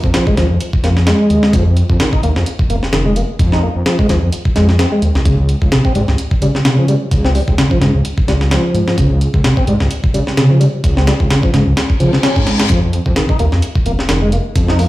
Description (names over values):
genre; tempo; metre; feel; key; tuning
breakbeat, breaks; 129 BPM; 4/4; swing 56% on 16ths; F minor; A4 = 439 Hz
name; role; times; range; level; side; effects
dark detuned saw bass; bass; 0.0-14.9 s; F1 to Db3; -14 LUFS; equal; tube saturation
breakbeat sampler-style drum kit; drums; 0.0-14.9 s; hi-hat, kick drum, snare drum; -16 LUFS; equal; none
tonewheel organ; riff; 0.1-14.8 s; C3 to Eb4; -17 LUFS; equal; overdrive, fast rotary speaker, tube saturation, vintage 12-bit sampler grit, ping-pong delay
reverse cymbal; sound effects; 11.9-12.7 s; none; -21 LUFS; left 4 dB; none
room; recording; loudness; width
moderate small room reverb, RT60 0.6 s; played on a big sound system in a bare room, large studio reverb; -11 LUFS; side -17 dB against mid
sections
0.0-14.9 A section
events
reverse cymbal 11.9-12.7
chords
0.0 Fm7; 5.3 Dbmaj7; 12.7 F7(no3)